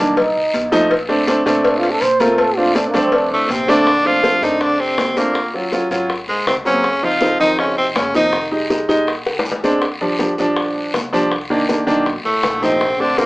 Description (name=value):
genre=Afro-Cuban jazz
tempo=161 BPM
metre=4/4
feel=straight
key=Bb major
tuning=A4 = 440 Hz
part: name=mellow trombone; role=second line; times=0.0-8.5, 12.3-13.3 s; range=Ab2 to C5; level=-21 LUFS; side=right 1 dB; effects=none
part: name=warm baby grand piano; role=accompaniment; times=0.0-13.3 s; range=D3 to F4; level=-17 LUFS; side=equal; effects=none
part: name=upright bass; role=bass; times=0.0-13.3 s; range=F1 to Bb2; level=-35 LUFS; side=equal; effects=none
part: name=congas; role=percussion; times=0.2-13.3 s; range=none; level=-27 LUFS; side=equal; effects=none
part: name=cowbell and bongos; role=percussion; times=0.2-13.3 s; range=none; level=-22 LUFS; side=left 2 dB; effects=none
part: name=guiro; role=percussion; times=0.2-13.3 s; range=none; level=-29 LUFS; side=left 2 dB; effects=none
part: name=edgy tenor saxophone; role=melody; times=3.3-8.5, 12.3-13.3 s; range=Ab3 to F4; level=-16 LUFS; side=equal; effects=none
room=moderate studio ambience, RT60 0.4 s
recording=band playing live in one room, small speaker sound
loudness=-14 LUFS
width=side -21 dB against mid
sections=0.0-3.9 A section; 3.9-13.3 B section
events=trombone solo 0.0-3.9; drum fill 9.3-9.8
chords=0.2 B7#11; 0.9 Bbmaj7; 5.4 Ebm7; 6.1 Ab7; 6.8 Dbmaj7; 8.3 Fm7; 9.1 Bb7; 9.8 Ebmaj9; 11.3 Cm7; 12.1 B7#11